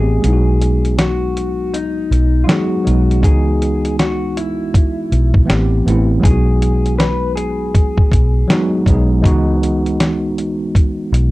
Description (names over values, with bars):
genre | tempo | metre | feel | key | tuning
lo-fi hip hop | 80 BPM | 4/4 | swing 63% on 16ths | C# minor | A4 = 440 Hz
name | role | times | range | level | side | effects
electric guitar through a small old amp | melody | 0.0-8.8 s | D#4 to B4 | -22 LUFS | left 3 dB | none
mellow tine electric piano | accompaniment | 0.0-11.3 s | E3 to D#5 | -18 LUFS | right 1 dB | medium stereo tremolo
vintage muted fingered electric bass | bass | 0.0-11.3 s | A1 to C#2 | -16 LUFS | equal | tube saturation
dusty soul sampler-style drum kit | drums | 0.2-11.3 s | hi-hat, kick drum, snare drum | -14 LUFS | equal | none
room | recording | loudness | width
little or no reverb | dry, gritty hardware recording, cassette tape | -13 LUFS | side -19 dB against mid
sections
0.0-11.3 A section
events
break 0.0-3.2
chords
0.2 G#m7/B; 3.2 C#m11; 5.5 Am7; 6.2 G#m7/B; 9.2 C#m11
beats
| 0.23 0.98 1.73 2.48 | 3.23 3.98 4.73 5.48 | 6.23 6.98 7.73 8.48 | 9.23 9.98 10.73